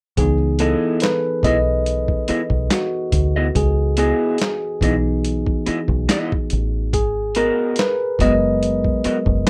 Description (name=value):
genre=R&B, neo-soul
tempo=71 BPM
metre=4/4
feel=swing 54% on 16ths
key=C# minor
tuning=A4 = 440 Hz
part: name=bell-like tine electric piano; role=accompaniment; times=0.2-9.5 s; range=E3 to D#5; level=-22 LUFS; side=equal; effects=none
part: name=deep dub fingered electric bass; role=bass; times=0.2-9.4 s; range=F#1 to D2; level=-23 LUFS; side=equal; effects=none
part: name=boom bap sampler-style drum kit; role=drums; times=0.2-9.5 s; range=handclaps, hi-hat, kick drum, snare drum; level=-24 LUFS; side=equal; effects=none
part: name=electric guitar through a small old amp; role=second line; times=0.6-9.5 s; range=B3 to D#5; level=-24 LUFS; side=equal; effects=none
room=light reverb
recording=rough home demo mix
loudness=-19 LUFS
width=mono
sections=0.2-9.5 A section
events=tine electric piano solo 0.2-9.5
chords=0.2 C#m9; 6.9 G#m9